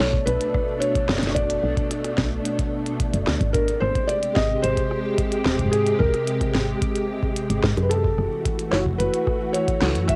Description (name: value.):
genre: IDM.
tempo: 110 BPM.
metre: 4/4.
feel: straight.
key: unclear.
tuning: A4 = 440 Hz.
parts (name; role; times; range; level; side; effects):
felt-muted upright piano; melody; 0.0-10.2 s; G#4 to E5; -28 LUFS; equal; analog delay, plate reverb.
soft string machine; sustained chords; 0.0-10.2 s; B2 to G4; -28 LUFS; equal; ensemble chorus, plate reverb.
woody FM bass; bass; 0.0-10.2 s; D#1 to G#2; -27 LUFS; equal; none.
glitchy drum kit; drums; 0.0-10.2 s; hi-hat, rim click, snare drum; -29 LUFS; equal; small room reverb, cassette tape.
electronic kick drum; drums; 0.1-10.2 s; none; -28 LUFS; equal; overdrive, small room reverb, cassette tape.
room: moderate booth ambience, RT60 0.2 s.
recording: home recording on cassette.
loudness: -23 LUFS.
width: mono.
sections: 0.0-10.2 A section.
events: none.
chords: 0.0 Bm7; 3.5 G#maj7; 7.9 F#m7.